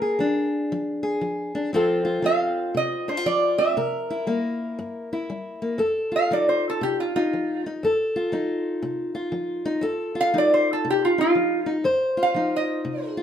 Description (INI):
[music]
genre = acoustic country blues, solo or duo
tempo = 118 BPM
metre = 4/4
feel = swing 64% on 8ths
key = F mixolydian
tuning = A4 = 440 Hz
[part]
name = lap resonator guitar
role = melody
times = 0.0-13.2 s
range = F4 to F5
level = -22 LUFS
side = right 1 dB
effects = none
[part]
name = fingerpicked old ladder-braced acoustic guitar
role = accompaniment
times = 0.0-13.2 s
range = F2 to C5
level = -24 LUFS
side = left 1 dB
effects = none
[sound]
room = wet studio reverb, RT60 0.6 s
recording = minimal, uncompressed stereo recording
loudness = -21 LUFS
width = side -9 dB against mid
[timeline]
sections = 0.0-5.8 A section; 5.8-13.2 B section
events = resonator guitar played with a steel bar solo 5.8-13.2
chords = 0.0 Bb7; 1.7 F; 3.8 C7; 5.8 F7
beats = 0.19 0.70 1.21 | 1.72 2.23 2.74 3.25 | 3.76 4.27 4.78 5.29 | 5.79 6.30 6.81 7.31 | 7.82 8.32 8.83 9.34 | 9.84 10.35 10.85 11.36 | 11.87 12.37 12.88